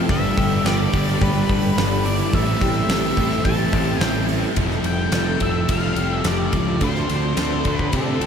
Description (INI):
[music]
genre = rock, shoegaze and dream pop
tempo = 107 BPM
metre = 4/4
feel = straight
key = unclear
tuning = A4 = 440 Hz
[part]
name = string machine, cellos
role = sustained chords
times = 0.0-8.3 s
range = A4 to E6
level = -29 LUFS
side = equal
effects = ensemble chorus
[part]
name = picked twelve-string acoustic guitar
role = arpeggios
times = 0.0-8.3 s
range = E4 to A4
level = -30 LUFS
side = left 6 dB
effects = ensemble chorus, diffuse ambient delay
[part]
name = crunchy overdriven guitar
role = riff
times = 0.0-8.3 s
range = F2 to D4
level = -27 LUFS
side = right 1 dB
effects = ensemble chorus
[part]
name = electric guitar through a small old amp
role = riff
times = 0.0-8.3 s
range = A2 to A4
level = -27 LUFS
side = right 8 dB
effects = reverse reverb
[part]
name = thick fuzz guitar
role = riff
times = 0.0-8.3 s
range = F2 to D4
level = -27 LUFS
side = left 7 dB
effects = distortion, wide subtle chorus
[part]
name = octave-fuzz lead guitar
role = melody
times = 0.1-8.3 s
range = A4 to A5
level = -27 LUFS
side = left 1 dB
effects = distortion, diffuse ambient delay
[part]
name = fuzz fingered electric bass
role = bass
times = 0.1-8.3 s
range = F1 to C3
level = -24 LUFS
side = equal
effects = overdrive
[part]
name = huge arena drum kit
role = drums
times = 0.1-8.3 s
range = hi-hat, kick drum, ride cymbal, snare drum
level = -24 LUFS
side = equal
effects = none
[sound]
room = moderate cathedral reverb, RT60 4.8 s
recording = dreamy mix soaked in reverb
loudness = -17 LUFS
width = side -7 dB against mid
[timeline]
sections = 0.0-4.6 A section; 4.6-8.3 B section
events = none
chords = 0.1 Gadd9; 2.3 Am7; 4.6 Fmaj9; 6.8 Dm7